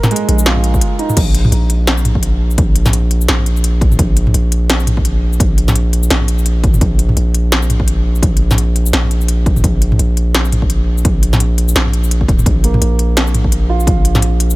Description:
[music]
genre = half-time drum and bass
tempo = 170 BPM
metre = 4/4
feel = swing 58% on 16ths, half-time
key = unclear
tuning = A4 = 441 Hz
[part]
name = felt-muted upright piano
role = arpeggios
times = 0.0-1.2, 12.6-14.6 s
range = Ab3 to Bb4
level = -22 LUFS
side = right 4 dB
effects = digital delay
[part]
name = industrial drum kit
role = drums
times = 0.0-14.6 s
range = crash cymbal, hi-hat, shaker, snare drum, toms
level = -17 LUFS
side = equal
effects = none
[part]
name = long sustained 808-style bass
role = bass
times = 0.3-14.6 s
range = Bb1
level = -13 LUFS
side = equal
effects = none
[part]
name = electronic kick drum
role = drums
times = 0.7-14.0 s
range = none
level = -14 LUFS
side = equal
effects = none
[sound]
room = little or no reverb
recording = none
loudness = -11 LUFS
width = side -20 dB against mid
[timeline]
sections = 0.0-1.2 A section; 1.2-14.6 A section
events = drop 0.0-1.2, 1.2-14.6; break 0.8-1.2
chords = 0.0 Bb5; 1.2 N.C.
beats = 0.11 0.46 0.81 | 1.17 1.52 1.87 2.23 | 2.58 2.93 3.29 3.64 | 3.99 4.34 4.70 5.05 | 5.40 5.76 6.11 6.46 | 6.82 7.17 7.52 7.87 | 8.23 8.58 8.93 9.29 | 9.64 9.99 10.34 10.70 | 11.05 11.40 11.76 12.11 | 12.46 12.81 13.17 13.52 | 13.87 14.23

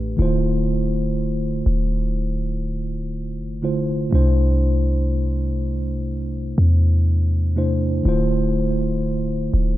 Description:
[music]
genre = contemporary R&B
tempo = 61 BPM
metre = 4/4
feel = straight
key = D minor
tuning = A4 = 441 Hz
[part]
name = mellow tine electric piano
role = accompaniment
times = 0.0-9.8 s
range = A2 to C5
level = -22 LUFS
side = equal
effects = slow stereo tremolo
[part]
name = clean 808-style bass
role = bass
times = 0.0-9.8 s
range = D1 to E2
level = -20 LUFS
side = equal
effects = none
[sound]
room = little or no reverb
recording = none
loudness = -18 LUFS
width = side -14 dB against mid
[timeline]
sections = 0.2-9.8 A section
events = none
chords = 0.2 Dm7; 4.1 C6; 8.1 Dm7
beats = | 0.18 1.17 2.15 3.13 | 4.12 5.10 6.08 7.07 | 8.05 9.04

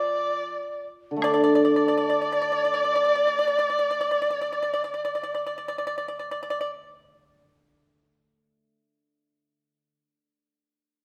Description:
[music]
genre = chinese traditional, Chinese chamber ensemble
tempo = 42 BPM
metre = 2/4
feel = rubato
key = unclear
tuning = A4 = 440 Hz
[part]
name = dark erhu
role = melody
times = 0.0-6.2 s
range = D5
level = -31 LUFS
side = equal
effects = none
[part]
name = mellow large dizi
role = second line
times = 0.0-6.1 s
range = D5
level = -30 LUFS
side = equal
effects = none
[part]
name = pipa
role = second line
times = 0.0-6.7 s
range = D5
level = -32 LUFS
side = equal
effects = none
[part]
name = hammered dulcimer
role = accompaniment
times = 0.0-9.9 s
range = D3 to D4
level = -26 LUFS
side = equal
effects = none
[part]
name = woodblock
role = percussion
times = 1.2-1.9 s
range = none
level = -37 LUFS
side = equal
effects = none
[sound]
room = moderate recital hall reverb, RT60 1.5 s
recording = none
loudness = -25 LUFS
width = mono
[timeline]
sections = 0.0-1.2 A section; 1.2-7.0 B section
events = slowing down 0.0-1.2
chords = none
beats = | 1.23 2.71 | 4.16 5.59

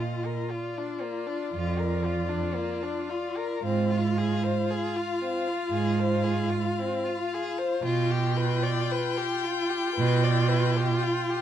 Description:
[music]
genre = classical, slow romantic movement for string quartet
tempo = 57 BPM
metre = 4/4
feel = rubato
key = unclear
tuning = A4 = 440 Hz
[part]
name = rich violin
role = melody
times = 0.0-11.4 s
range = D5 to G5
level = -34 LUFS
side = left 9 dB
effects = none
[part]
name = rich violin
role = second line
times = 0.0-11.4 s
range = Bb3 to D5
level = -32 LUFS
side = left 4 dB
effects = none
[part]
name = warm viola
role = accompaniment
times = 0.0-11.4 s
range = F4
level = -31 LUFS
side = equal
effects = none
[part]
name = warm cello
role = bass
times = 0.0-10.9 s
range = F2 to B2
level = -27 LUFS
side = right 4 dB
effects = none
[sound]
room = light reverb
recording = dark, warm production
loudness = -25 LUFS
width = side -10 dB against mid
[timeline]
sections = 0.0-11.4 A section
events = none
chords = 0.0 Bb; 3.6 Fm/Ab; 7.8 G7/B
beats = 0.51 1.55 2.58 | 3.64 4.69 5.73 6.77 | 7.83 8.92 9.98 11.06

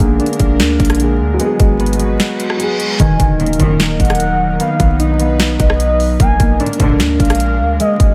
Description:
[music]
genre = hip hop, trap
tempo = 150 BPM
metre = 4/4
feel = half-time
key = Eb harmonic minor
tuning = A4 = 437 Hz
[part]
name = dark concert grand piano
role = accompaniment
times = 0.0-3.0 s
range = D3 to Ab4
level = -21 LUFS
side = equal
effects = none
[part]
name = airy breathy pad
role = sustained chords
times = 0.1-8.1 s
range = Gb3 to Cb5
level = -26 LUFS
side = equal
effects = chorus
[part]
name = concert harp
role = arpeggios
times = 0.0-8.1 s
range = Eb3 to D#4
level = -20 LUFS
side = equal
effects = tape echo
[part]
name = hard-hitting 808-style bass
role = bass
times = 0.0-8.1 s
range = Eb1 to D2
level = -19 LUFS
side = equal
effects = none
[part]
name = trap drum kit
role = drums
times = 0.0-8.1 s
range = hi-hat, kick drum, rim click, snare drum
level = -18 LUFS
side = equal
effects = none
[part]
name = reverse cymbal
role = sound effects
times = 2.3-3.0 s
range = none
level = -25 LUFS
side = equal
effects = none
[part]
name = gliding portamento lead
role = second line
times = 3.0-8.1 s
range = D#5 to Ab5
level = -22 LUFS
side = equal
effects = chorus, tape echo
[part]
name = muted studio string section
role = stabs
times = 3.4-3.9, 6.6-7.1 s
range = Bb1 to Eb3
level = -24 LUFS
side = equal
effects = none
[sound]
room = light reverb, digital ambience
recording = vinyl crackle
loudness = -14 LUFS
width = mono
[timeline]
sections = 0.0-3.0 A section; 3.0-8.1 B section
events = break 2.2-3.0; reverse cymbal 2.4-3.0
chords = 0.0 Bb7; 1.4 Abm7; 3.0 Ebm; 4.6 B; 6.2 Bb7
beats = 0.20 0.60 1.00 | 1.40 1.80 2.20 2.60 | 3.00 3.40 3.80 4.20 | 4.60 5.00 5.40 5.80 | 6.20 6.60 7.00 7.40 | 7.80

